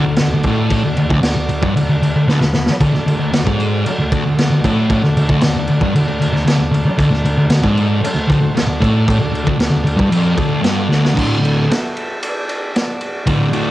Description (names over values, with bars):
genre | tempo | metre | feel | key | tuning
garage rock duo or trio | 115 BPM | 4/4 | straight | D major | A4 = 440 Hz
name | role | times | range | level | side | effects
combo organ | sustained chords | 0.0-13.7 s | F#4 to E5 | -25 LUFS | right 1 dB | none
thick fuzz guitar | riff | 0.0-13.7 s | D2 to D3 | -14 LUFS | equal | distortion
crunchy breakbeat drum kit | drums | 0.2-13.7 s | crash cymbal, kick drum, ride cymbal, snare drum | -19 LUFS | equal | cassette tape
room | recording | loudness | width
moderate studio reverb, RT60 0.6 s | home recording on cassette | -13 LUFS | side -15 dB against mid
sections
0.0-11.2 A section; 11.2-13.7 B section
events
drum fill 2.3-2.8, 10.9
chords
0.0 D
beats
0.19 | 0.71 1.23 1.76 2.28 | 2.80 3.33 3.85 4.37 | 4.90 5.42 5.94 6.46 | 6.99 7.51 8.03 8.56 | 9.08 9.60 10.13 10.65 | 11.18 11.70 12.22 12.75 | 13.27